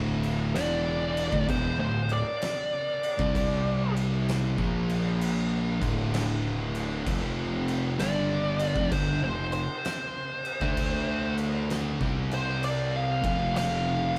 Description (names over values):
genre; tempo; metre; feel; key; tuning
stoner and doom metal; 65 BPM; 4/4; swing 65% on 8ths; D minor; A4 = 439 Hz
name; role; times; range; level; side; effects
thick fuzz guitar; riff; 0.0-14.2 s; D2 to D4; -35 LUFS; equal; distortion
thick fuzz guitar; riff; 0.0-14.2 s; D2 to D4; -36 LUFS; equal; distortion
thick fuzz guitar; riff; 0.0-14.2 s; D2 to D4; -36 LUFS; equal; distortion
fuzz picked electric bass; bass; 0.0-14.2 s; D1 to D2; -36 LUFS; equal; overdrive
oversized low-tuned drum kit; drums; 0.2-14.2 s; crash cymbal, kick drum, snare drum; -36 LUFS; equal; none
fuzz lead guitar; melody; 0.6-14.2 s; C5 to F5; -32 LUFS; equal; wah, distortion
room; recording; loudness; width
moderate stone room reverb, RT60 1.3 s; band playing live in one room; -28 LUFS; mono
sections
0.0-14.2 A section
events
lead electric guitar solo 0.0-14.2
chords
0.0 D5; 3.1 C5; 4.5 Bb5; 5.7 D5; 7.1 F5; 10.5 D5; 11.9 C5; 13.1 F5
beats
0.55 1.48 2.42 | 3.35 4.28 5.21 6.13 | 7.06 7.99 8.92 9.85 | 10.78 11.70 12.63 13.56